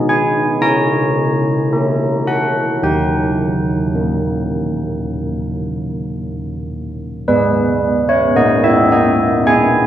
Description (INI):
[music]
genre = classical, tune for church bells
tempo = 54 BPM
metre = 4/4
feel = straight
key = G# minor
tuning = A4 = 438 Hz
[part]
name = old church bells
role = solo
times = 0.0-9.9 s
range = D#3 to A#5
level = -14 LUFS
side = equal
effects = none
[sound]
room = light reverb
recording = close, detailed microphones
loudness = -14 LUFS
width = side -11 dB against mid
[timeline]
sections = 0.0-7.3 A section; 7.3-9.9 B section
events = none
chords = 0.0 G#m/B; 0.6 A#dim/C#; 2.8 D#; 7.3 G#m